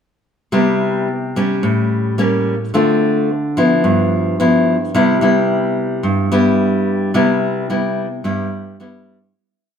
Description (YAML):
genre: bossa nova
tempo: 109 BPM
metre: 4/4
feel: straight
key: C major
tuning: A4 = 440 Hz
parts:
  - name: nylon-string guitar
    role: solo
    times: 0.5-9.3 s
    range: G2 to F4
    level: -14 LUFS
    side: equal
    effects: none
room: moderate echo chamber reverb, RT60 1.8 s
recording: none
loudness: -14 LUFS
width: side -7 dB against mid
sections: 0.5-9.4 A section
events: fade-out 7.2-9.4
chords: 0.5 Cmaj7; 1.6 A7b9; 2.7 Dm7; 3.8 G6; 4.9 Cmaj7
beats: | 0.53 1.08 1.63 2.18 | 2.74 3.29 3.84 4.39 | 4.94 5.50 6.05 6.60 | 7.15 7.70 8.25 8.80